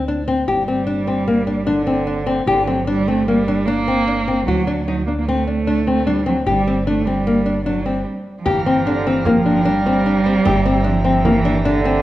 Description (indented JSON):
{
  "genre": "contemporary instrumental, chamber music in an uneven meter",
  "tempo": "150 BPM",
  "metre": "5/4",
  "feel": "straight",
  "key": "G harmonic minor, G dorian from 8.5 s",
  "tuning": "A4 = 440 Hz",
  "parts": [
    { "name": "upright bass", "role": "bass", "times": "0.0-12.0 s", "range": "G1 to D2", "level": "-25 LUFS", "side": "right 1 dB", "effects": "none" },
    { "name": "nylon-string guitar", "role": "arpeggios", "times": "0.1-12.0 s", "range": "Bb3 to G4", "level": "-18 LUFS", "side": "left 2 dB", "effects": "none" },
    { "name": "warm cello", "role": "second line", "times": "0.5-12.0 s", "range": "D3 to Bb3", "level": "-20 LUFS", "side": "right 3 dB", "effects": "none" },
    { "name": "pedal harmonium", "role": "sustained chords", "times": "8.5-12.0 s", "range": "G4 to Bb5", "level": "-24 LUFS", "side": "equal", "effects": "none" },
    { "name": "frame drum", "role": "percussion", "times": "8.5-12.0 s", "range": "none", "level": "-27 LUFS", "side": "right 2 dB", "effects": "none" }
  ],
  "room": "wet recital hall reverb, RT60 1.7 s",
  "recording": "worn, warbling old tape, cassette tape, warbly pitch drift",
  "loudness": "-15 LUFS",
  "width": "side -14 dB against mid",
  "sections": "0.0-8.5 A section; 8.5-12.0 B section",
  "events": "stop 8.1-8.5",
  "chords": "0.5 G5; 4.5 D; 6.5 G5; 8.5 Gm7"
}